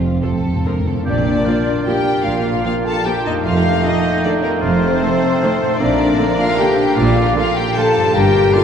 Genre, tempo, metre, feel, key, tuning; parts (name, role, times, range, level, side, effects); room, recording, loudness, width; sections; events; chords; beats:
classical; 152 BPM; 3/4; uneven beats, rubato; Bb major; A4 = 440 Hz
rich studio violin section; second line; 0.0-8.6 s; Bb3 to Bb4; -25 LUFS; left 1 dB
mellow French horn section; sustained chords; 0.0-8.6 s; Bb3 to A4; -22 LUFS; left 3 dB
concert harp; arpeggios; 0.0-8.6 s; F2 to G4; -25 LUFS; left 6 dB
rich symphonic cello section; bass; 0.0-8.5 s; F2 to Bb2; -22 LUFS; right 3 dB
rich symphonic double bass section; bass; 0.0-8.5 s; F1 to Bb1; -24 LUFS; right 4 dB
timpani; percussion; 0.0-1.6 s; F2 to Bb2; -24 LUFS; equal
rich symphonic violin section; melody; 0.2-8.6 s; Bb4 to A5; -22 LUFS; left 3 dB
rich studio viola section; accompaniment; 0.2-8.6 s; D3 to A4; -27 LUFS; right 1 dB
dark clarinet; second line; 1.1-8.6 s; D4 to F4; -27 LUFS; equal
mellow hollow silver concert flute; second line; 1.1-8.6 s; Bb4 to A5; -25 LUFS; left 1 dB
warm oboe; second line; 1.1-8.6 s; F4 to D5; -25 LUFS; right 1 dB
mellow bassoon; accompaniment; 1.1-8.6 s; A3 to Bb3; -23 LUFS; right 2 dB
wet cathedral reverb, RT60 6.7 s; dark, warm production; -14 LUFS; side -8 dB against mid
0.0-1.1 A section; 1.1-8.6 B section
timpani fill 0.0-1.1
0.0 F; 1.1 Bb; 3.4 F7; 5.8 Bb
0.23 0.66 | 1.06 1.46 1.87 | 2.25 2.65 3.06 | 3.45 3.84 4.24 | 4.63 5.02 5.42 | 5.81 6.19 6.60 | 6.98 7.37 7.77 | 8.15 8.54